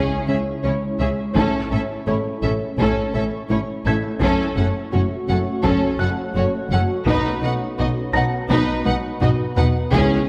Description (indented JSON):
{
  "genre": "cinematic, hybrid orchestral and electronic film score",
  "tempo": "84 BPM",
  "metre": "4/4",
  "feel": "straight",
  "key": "unclear",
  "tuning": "A4 = 437 Hz",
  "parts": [
    { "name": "warm symphonic violin section", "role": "melody", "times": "0.0-10.3 s", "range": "Ab4 to Gb5", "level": "-30 LUFS", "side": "equal", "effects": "none" },
    { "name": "warm symphonic violin section", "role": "second line", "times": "0.0-10.3 s", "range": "Db4 to B4", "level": "-33 LUFS", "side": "equal", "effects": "none" },
    { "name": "rich symphonic viola section", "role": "accompaniment", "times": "0.0-10.3 s", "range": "Db4 to D#4", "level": "-30 LUFS", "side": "equal", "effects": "none" },
    { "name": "dark French horn section", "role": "sustained chords", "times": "0.0-10.2 s", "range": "Ab3 to Fb4", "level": "-31 LUFS", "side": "equal", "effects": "none" },
    { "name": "shimmering ambient pad", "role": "sustained chords", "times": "0.1-10.3 s", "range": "Ab3 to Db5", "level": "-30 LUFS", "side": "equal", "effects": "chorus, built-in reverb, phaser" },
    { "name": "harp-like synth pluck", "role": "arpeggios", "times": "0.0-10.1 s", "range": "Db3 to B4", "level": "-31 LUFS", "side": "equal", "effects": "chorus, delay" },
    { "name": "felt-muted upright piano", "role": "texture", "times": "0.0-10.3 s", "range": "Bb5 to Bb6", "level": "-33 LUFS", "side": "equal", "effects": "none" },
    { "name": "warm chamber cello section", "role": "bass", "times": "0.3-10.0 s", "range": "Gb2 to Db3", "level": "-28 LUFS", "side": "equal", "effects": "none" },
    { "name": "warm chamber double bass section", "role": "bass", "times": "0.3-10.0 s", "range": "Gb1 to Db2", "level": "-27 LUFS", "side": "equal", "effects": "none" },
    { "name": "taiko ensemble", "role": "drums", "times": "1.4-10.3 s", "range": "none", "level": "-27 LUFS", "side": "equal", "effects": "none" }
  ],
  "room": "moderate concert hall reverb, RT60 2.1 s",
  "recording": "none",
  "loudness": "-21 LUFS",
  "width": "mono",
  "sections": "0.0-10.3 A section",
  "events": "drum fill 8.9-9.9",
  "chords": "0.0 Dbm; 1.4 A; 4.2 Gbm; 7.1 B",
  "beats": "0.64 | 1.36 2.07 2.79 3.50 | 4.22 4.93 5.64 6.36 | 7.07 7.79 8.50 9.22 | 9.93"
}